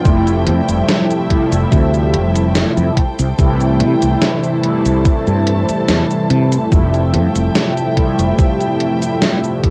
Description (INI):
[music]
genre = vaporwave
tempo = 72 BPM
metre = 4/4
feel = straight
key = F major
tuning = A4 = 441 Hz
[part]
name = mellow synth brass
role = accompaniment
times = 0.0-9.7 s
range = C3 to E4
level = -19 LUFS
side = equal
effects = subtle chorus, tape echo
[part]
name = dark studio string section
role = sustained chords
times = 0.0-9.7 s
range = F3 to A5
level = -24 LUFS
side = equal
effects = none
[part]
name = mellow fretless electric bass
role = bass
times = 0.1-8.3 s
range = F1 to C3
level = -18 LUFS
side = equal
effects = none
[part]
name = electronic kick drum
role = drums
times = 0.1-9.7 s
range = none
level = -16 LUFS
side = equal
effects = cassette tape
[part]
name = gated 80s digital drum machine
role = drums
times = 0.1-9.7 s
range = cabasa, hi-hat, snare drum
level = -21 LUFS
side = equal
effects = gated reverb, gated reverb snare, cassette tape
[sound]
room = moderate studio reverb, RT60 0.6 s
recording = home recording on cassette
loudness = -15 LUFS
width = mono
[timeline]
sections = 0.0-9.7 A section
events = none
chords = 0.1 Fmaj9; 3.0 C6; 6.7 Fmaj9